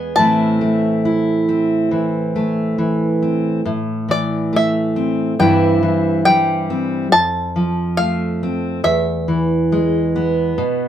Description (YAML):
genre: folk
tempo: 69 BPM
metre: 4/4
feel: straight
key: A minor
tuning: A4 = 440 Hz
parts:
  - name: bluegrass banjo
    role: melody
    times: 0.0-10.1 s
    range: D5 to A5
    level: -16 LUFS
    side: left 1 dB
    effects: none
  - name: fingerpicked steel-string acoustic guitar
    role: accompaniment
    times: 0.0-10.9 s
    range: E2 to G#4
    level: -16 LUFS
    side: equal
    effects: none
room: moderate studio reverb, RT60 0.6 s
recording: band playing live in one room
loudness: -15 LUFS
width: side -10 dB against mid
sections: 0.0-3.6 A section; 3.6-10.9 B section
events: none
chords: 0.2 Am; 5.4 C/G; 7.1 F; 8.8 E